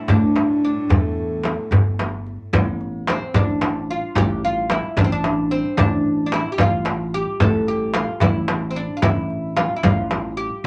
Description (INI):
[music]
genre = Arabic maqam ensemble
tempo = 74 BPM (dotted quarters)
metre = 6/8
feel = straight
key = A maqam bayati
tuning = A4 = 440 Hz
[part]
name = oud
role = melody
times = 0.0-10.7 s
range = A3 to A4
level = -25 LUFS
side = equal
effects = none
[part]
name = rich cello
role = drone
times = 0.0-2.6 s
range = A2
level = -37 LUFS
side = equal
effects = none
[part]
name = upright bass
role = bass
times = 0.1-10.7 s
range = G1 to A2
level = -27 LUFS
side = equal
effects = none
[part]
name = darbuka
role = percussion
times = 0.1-10.2 s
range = none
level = -23 LUFS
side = equal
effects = none
[part]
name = frame drum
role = percussion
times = 0.1-10.2 s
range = none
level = -25 LUFS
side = equal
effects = none
[sound]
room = moderate club reverb, RT60 0.6 s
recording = none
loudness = -20 LUFS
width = mono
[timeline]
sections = 0.0-2.5 A section; 2.5-10.7 B section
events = none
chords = none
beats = 0.09 | 0.90 1.72 | 2.53 3.34 | 4.15 4.96 | 5.78 6.59 | 7.40 8.21 | 9.02 9.84 | 10.65